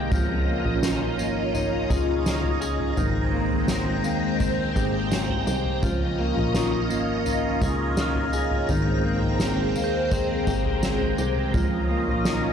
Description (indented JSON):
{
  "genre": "dream pop",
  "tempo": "84 BPM",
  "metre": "4/4",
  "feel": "straight",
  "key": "Db lydian",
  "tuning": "A4 = 440 Hz",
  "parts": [
    { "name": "phased string machine", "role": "sustained chords", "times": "0.0-12.5 s", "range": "Ab3 to Bb5", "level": "-26 LUFS", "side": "equal", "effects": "ensemble chorus, phaser" },
    { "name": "clean electric guitar", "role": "arpeggios", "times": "0.0-12.5 s", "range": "Eb3 to Ab4", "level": "-28 LUFS", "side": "left 1 dB", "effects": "lush chorus, tape echo" },
    { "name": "plucky analog bass", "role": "bass", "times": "0.0-12.5 s", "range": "Ab1 to Eb2", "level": "-29 LUFS", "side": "equal", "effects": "none" },
    { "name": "soft-mallet drum kit", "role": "drums", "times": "0.1-12.4 s", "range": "crash cymbal, kick drum, snare drum, tambourine, toms", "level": "-27 LUFS", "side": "equal", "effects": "none" },
    { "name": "glockenspiel with hard plastic mallets", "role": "texture", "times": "0.2-0.9, 8.0-10.5 s", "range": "F6 to G6", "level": "-40 LUFS", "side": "right 2 dB", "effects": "tape echo" }
  ],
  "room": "light reverb, small room ambience",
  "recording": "dry, gritty hardware recording, cassette tape",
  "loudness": "-22 LUFS",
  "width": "side -8 dB against mid",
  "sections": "0.1-12.5 A section",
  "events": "none",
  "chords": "0.1 Db69; 3.0 Abmaj9; 5.8 Db69; 8.7 Abmaj9; 11.5 Db69",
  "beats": "| 0.12 0.83 1.54 2.26 | 2.97 3.69 4.40 5.12 | 5.83 6.54 7.26 7.97 | 8.69 9.40 10.12 10.83 | 11.54 12.26"
}